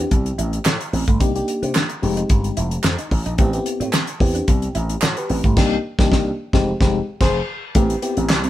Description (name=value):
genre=early-eighties boogie funk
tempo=110 BPM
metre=4/4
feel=straight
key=unclear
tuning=A4 = 440 Hz
part: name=FM electric piano with auto-pan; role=accompaniment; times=0.0-8.5 s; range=Ab3 to C5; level=-23 LUFS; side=left 2 dB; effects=none
part: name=mellow electric guitar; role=riff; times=0.0-8.5 s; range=A3 to E4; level=-27 LUFS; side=right 4 dB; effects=none
part: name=slap bass with an envelope filter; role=bass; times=0.0-8.5 s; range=F1 to C3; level=-23 LUFS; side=equal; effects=none
part: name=damped 70s drum kit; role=drums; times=0.1-8.5 s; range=crash cymbal, handclaps, hi-hat, kick drum, snare drum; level=-19 LUFS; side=equal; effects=none
part: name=group handclap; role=percussion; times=0.7-5.2 s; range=none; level=-26 LUFS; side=right 4 dB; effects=none
room=light reverb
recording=band playing live in one room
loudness=-17 LUFS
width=side -14 dB against mid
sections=0.0-7.8 A section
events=band accent 5.6-7.8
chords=0.0 Am9; 1.2 Cm9; 2.0 Fm9; 3.4 Am9; 5.6 Cm9; 6.4 Fm9; 7.8 Am9